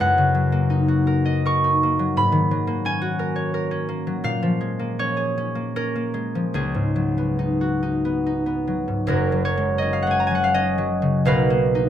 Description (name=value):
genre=classical, solo harp piece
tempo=69-89 BPM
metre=3/4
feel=rubato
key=F# major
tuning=A4 = 440 Hz
part: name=concert harp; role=solo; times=0.0-11.9 s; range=F#1 to C#6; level=-19 LUFS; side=equal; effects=none
room=little or no reverb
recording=close, detailed microphones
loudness=-19 LUFS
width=side -10 dB against mid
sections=0.0-9.1 A section; 9.1-11.9 B section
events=none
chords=0.0 F#6; 2.2 G#m11; 4.3 A#m7; 6.6 C#9sus4; 9.1 F#add9; 11.3 Bmaj7#11